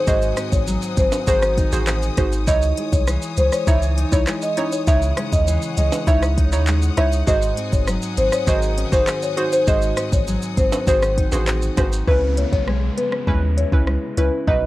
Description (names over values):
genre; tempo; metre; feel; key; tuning
dancehall; 100 BPM; 4/4; straight; unclear; A4 = 440 Hz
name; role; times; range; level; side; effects
marimba with medium mallets; melody; 0.0-14.6 s; B4 to E5; -22 LUFS; equal; analog delay
rich studio string section; sustained chords; 0.0-12.0 s; B#4 to D#6; -32 LUFS; left 5 dB; sidechain pumping
nylon-string guitar; arpeggios; 0.0-14.7 s; G#2 to E4; -28 LUFS; left 2 dB; none
analog pluck; accompaniment; 0.1-14.7 s; C#4 to C#5; -26 LUFS; right 2 dB; chorus
punchy sub bass; bass; 0.1-14.7 s; F#1 to D#2; -21 LUFS; equal; none
afro-pop drum kit; drums; 0.1-14.6 s; handclaps, hi-hat, kick drum, rim click, shaker; -21 LUFS; equal; none
maracas and timbales; percussion; 0.1-12.1 s; none; -31 LUFS; right 3 dB; none
downlifter; sound effects; 12.1-14.7 s; none; -34 LUFS; equal; none
room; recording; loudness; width
small room reverb; dry, gritty hardware recording, cassette tape; -17 LUFS; side -16 dB against mid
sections
0.0-12.1 A section; 12.1-14.7 B section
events
none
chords
0.0 G#7; 2.5 C#madd9; 7.3 G#7; 12.1 C#m7